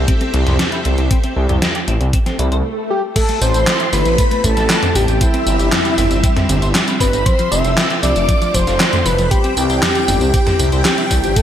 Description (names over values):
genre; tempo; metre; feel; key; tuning
synthwave; 117 BPM; 4/4; straight; unclear; A4 = 440 Hz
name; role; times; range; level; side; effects
string machine, full ensemble; sustained chords; 0.0-11.4 s; G3 to E5; -23 LUFS; equal; ensemble chorus, sidechain pumping, shimmer reverb
wide detuned saw bass; bass; 0.0-11.3 s; F1 to C2; -18 LUFS; equal; chorus, sidechain pumping
clean electric guitar; riff; 0.1-11.4 s; F3 to C5; -26 LUFS; left 3 dB; ensemble chorus, tape echo, shimmer reverb
electronic kick drum; drums; 0.1-11.4 s; none; -16 LUFS; equal; none
gated 80s digital drum machine; drums; 0.1-11.4 s; crash cymbal, handclaps, hi-hat, snare drum, tambourine, toms; -18 LUFS; equal; gated reverb, gated reverb snare, overdrive
swell; sound effects; 2.3-3.2 s; none; -26 LUFS; right 1 dB; none
wide unison lead; melody; 2.9-11.4 s; E4 to E5; -19 LUFS; equal; digital delay, shimmer reverb
string machine, violins; second line; 3.2-11.4 s; E5 to E6; -24 LUFS; left 1 dB; ensemble chorus, digital delay, shimmer reverb
room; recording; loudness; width
light reverb; none; -13 LUFS; side -10 dB against mid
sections
0.0-3.2 A section; 3.2-11.4 B section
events
swell 2.3-3.2; stop 2.6-3.2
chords
0.0 C6; 3.2 Am7; 5.2 C/G; 7.3 F; 9.3 C